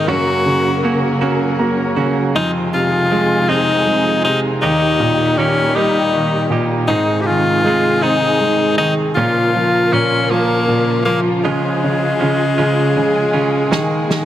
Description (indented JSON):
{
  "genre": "six-eight pop ballad",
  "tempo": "53 BPM (dotted quarters)",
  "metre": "6/8",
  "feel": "straight",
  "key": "Ab major",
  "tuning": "A4 = 443 Hz",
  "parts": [
    { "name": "edgy tenor saxophone", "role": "melody", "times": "0.0-14.2 s", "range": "Ab3 to G4", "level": "-17 LUFS", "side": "left 2 dB", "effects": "none" },
    { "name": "clear concert grand piano", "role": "accompaniment", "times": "0.0-14.2 s", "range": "Eb2 to Bb5", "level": "-18 LUFS", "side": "right 1 dB", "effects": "none" },
    { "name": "warm studio string section", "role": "sustained chords", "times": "0.0-14.2 s", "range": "Bb2 to Bb4", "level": "-22 LUFS", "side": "left 1 dB", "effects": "none" },
    { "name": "direct-recorded clean electric guitar", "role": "arpeggios", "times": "0.0-14.2 s", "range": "F2 to Ab4", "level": "-23 LUFS", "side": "right 6 dB", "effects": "none" },
    { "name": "snare drum", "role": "drums", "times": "13.7-14.2 s", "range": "none", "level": "-20 LUFS", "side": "right 2 dB", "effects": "none" }
  ],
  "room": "light reverb, small room reverb",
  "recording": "none",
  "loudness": "-13 LUFS",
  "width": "side -12 dB against mid",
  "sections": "0.0-14.2 A section",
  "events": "grand piano fill 1.2-2.3; drum fill 13.7-14.2",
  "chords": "0.1 Gb; 2.3 Fm7; 4.6 Eb; 6.9 Ab; 9.2 Bbm; 11.4 Db; 13.7 Ebsus4"
}